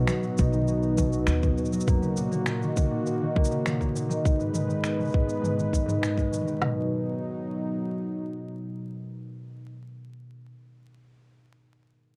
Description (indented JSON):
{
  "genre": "folktronica",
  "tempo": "101 BPM",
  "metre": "4/4",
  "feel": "straight",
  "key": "B major",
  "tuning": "A4 = 440 Hz",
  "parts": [
    { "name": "warm analog pad", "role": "sustained chords", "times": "0.0-9.8 s", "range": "B2 to B4", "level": "-34 LUFS", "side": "equal", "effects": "chorus" },
    { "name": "concert harp", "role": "arpeggios", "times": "0.0-10.5 s", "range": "G#2 to D#4", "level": "-32 LUFS", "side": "equal", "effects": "low-pass filter, tape echo" },
    { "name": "upright bass", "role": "bass", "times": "0.0-1.8 s", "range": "B1 to D#2", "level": "-29 LUFS", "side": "equal", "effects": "none" },
    { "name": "organic electronic drum kit", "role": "drums", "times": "0.1-6.6 s", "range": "cabasa, finger snaps, toms", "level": "-35 LUFS", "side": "equal", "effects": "none" },
    { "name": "organic electronic drum kit", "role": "drums", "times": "0.4-6.8 s", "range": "kick drum, snare drum, toms", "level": "-27 LUFS", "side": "equal", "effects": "none" }
  ],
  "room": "digital ambience",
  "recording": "dry, close 1970s-style studio recording, vinyl crackle",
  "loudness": "-27 LUFS",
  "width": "mono",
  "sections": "0.0-6.6 A section; 6.6-9.0 B section",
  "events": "none",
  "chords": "0.0 B; 1.9 F#6/A#; 4.2 G#m; 6.6 B"
}